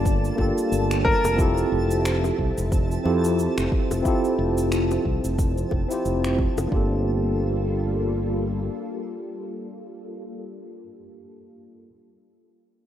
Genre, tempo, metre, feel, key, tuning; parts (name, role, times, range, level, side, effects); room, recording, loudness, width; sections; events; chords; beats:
sunset chillout; 90 BPM; 4/4; swing 57% on 16ths; G dorian; A4 = 437 Hz
bright grand piano; melody; 0.0-1.4 s; Bb4 to D5; -26 LUFS; left 1 dB; tape echo
tine electric piano; accompaniment; 0.0-11.9 s; Bb3 to C5; -26 LUFS; equal; medium stereo tremolo, auto-pan, tape echo
soft string machine; sustained chords; 0.0-10.1 s; F3 to A5; -31 LUFS; left 1 dB; phaser, ensemble chorus
fretless electric bass; bass; 0.0-8.7 s; F1 to F2; -26 LUFS; equal
twinkling granular texture; texture; 0.0-6.7 s; A5; -38 LUFS; right 1 dB; built-in reverb
electronic cabasa and finger snaps; drums; 0.1-6.7 s; -35 LUFS; equal; overdrive
electronic kick drum; drums; 0.1-6.9 s; -24 LUFS; equal; overdrive
bongos; percussion; 0.4-6.7 s; -34 LUFS; left 4 dB
moderate lush hall reverb, RT60 1.6 s; rough home demo mix; -21 LUFS; side -11 dB against mid
0.0-6.7 A section; 6.7-9.4 B section
0.0 Gm9; 1.4 Fmaj7; 6.7 Gm9
0.05 0.72 | 1.39 2.05 2.72 3.39 | 4.05 4.72 5.39 6.05 | 6.72 7.39 8.05 8.72